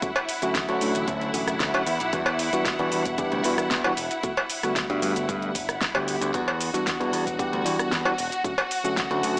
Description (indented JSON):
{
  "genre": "nu-disco, nu disco",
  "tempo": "114 BPM",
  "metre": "4/4",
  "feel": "straight",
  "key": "E dorian",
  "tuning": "A4 = 440 Hz",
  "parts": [
    { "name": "tine electric piano", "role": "accompaniment", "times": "0.0-9.4 s", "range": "D3 to A4", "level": "-27 LUFS", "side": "equal", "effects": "medium stereo tremolo, sidechain pumping, tape echo" },
    { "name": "clear symphonic string section", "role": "sustained chords", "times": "0.0-9.4 s", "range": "E4 to F#5", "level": "-29 LUFS", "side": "equal", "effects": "sidechain pumping" },
    { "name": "electronic kick drum", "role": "drums", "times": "0.0-9.1 s", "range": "none", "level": "-34 LUFS", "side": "equal", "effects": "studio reverb" },
    { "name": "pop drum kit", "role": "drums", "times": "0.0-9.4 s", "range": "hi-hat, rim click, shaker, snare drum", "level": "-29 LUFS", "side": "equal", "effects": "studio reverb" },
    { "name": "cowbell", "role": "percussion", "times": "0.2-8.7 s", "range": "none", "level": "-26 LUFS", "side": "equal", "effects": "none" },
    { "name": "modern bright picked electric bass", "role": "bass", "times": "0.7-9.4 s", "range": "E1 to G2", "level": "-30 LUFS", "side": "equal", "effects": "sidechain pumping" }
  ],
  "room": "light reverb, digital ambience",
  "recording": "dry, gritty hardware recording, small speaker sound",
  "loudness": "-22 LUFS",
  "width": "side -30 dB against mid",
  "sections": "0.0-9.4 A section",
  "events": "none",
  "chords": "0.0 Dmaj7; 1.9 Em9; 4.2 Gmaj9; 6.3 Em9; 8.4 Dmaj7"
}